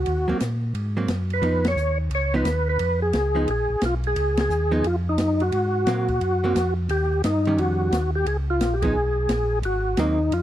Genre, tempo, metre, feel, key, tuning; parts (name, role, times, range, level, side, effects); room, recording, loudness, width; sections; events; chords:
soul jazz organ trio; 176 BPM; 4/4; swing 64% on 8ths; A4 = 439 Hz
percussive tonewheel organ; melody; 0.0-10.4 s; Eb4 to Db5; -23 LUFS; equal; slow rotary speaker, overdrive, chorus vibrato
mellow tonewheel organ; bass; 0.0-10.4 s; Ab1 to Bb2; -24 LUFS; equal; slow rotary speaker
open jazz drum kit; drums; 0.1-10.4 s; hi-hat, kick drum, ride cymbal, snare drum; -30 LUFS; equal
hollow-body jazz guitar; accompaniment; 0.3-10.2 s; Eb3 to Eb4; -27 LUFS; right 2 dB
studio reverb; dry, close 1970s-style studio recording; -20 LUFS; side -12 dB against mid
0.0-10.4 A section
band accent 1.6, 4.3, 8.8
0.0 Ab9; 1.4 Db9; 5.5 Ab9; 6.9 Eb9; 8.3 Db7; 9.6 Ab9